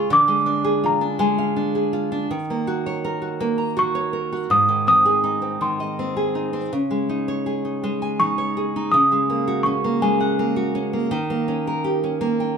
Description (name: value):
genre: children's music, lullaby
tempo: 55 BPM (dotted quarters)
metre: 6/8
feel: straight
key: unclear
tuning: A4 = 438 Hz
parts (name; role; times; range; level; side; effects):
- worn celesta; melody; 0.0-10.8 s; Ab5 to Eb6; -19 LUFS; equal; plate reverb
- nylon-string guitar; accompaniment; 0.0-12.6 s; Ab2 to Bb5; -22 LUFS; right 1 dB; none
room: wet studio reverb, RT60 0.5 s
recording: heard from further back in the room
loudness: -19 LUFS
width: side -6 dB against mid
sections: 0.0-12.6 A section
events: none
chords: 0.1 Ddim; 2.3 Ebm7; 4.5 Ab; 6.7 Dbsus2; 8.9 Gbadd9/Db; 11.1 Eb7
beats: | 0.12 1.22 | 2.31 3.41 | 4.50 5.61 | 6.72 7.83 | 8.94 10.03 | 11.13 12.22